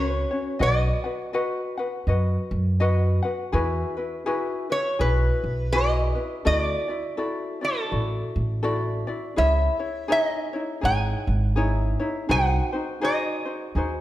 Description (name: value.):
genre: Hawaiian.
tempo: 82 BPM.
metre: 4/4.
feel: swing 60% on 8ths.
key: E major.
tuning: A4 = 439 Hz.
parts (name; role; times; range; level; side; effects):
lap resonator guitar; melody; 0.0-14.0 s; A4 to G#5; -26 LUFS; right 1 dB; none.
ukulele; accompaniment; 0.0-14.0 s; C#4 to F#5; -27 LUFS; left 2 dB; none.
upright bass; bass; 0.0-14.0 s; G#1 to F#2; -23 LUFS; right 1 dB; none.
room: moderate recital hall reverb, RT60 1.5 s.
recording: none.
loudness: -22 LUFS.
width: side -14 dB against mid.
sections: 0.0-14.0 A section.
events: none.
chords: 0.0 F#; 0.6 B; 3.5 Eadd9; 6.5 Dadd9; 9.4 C#madd9; 12.3 G#7/B#.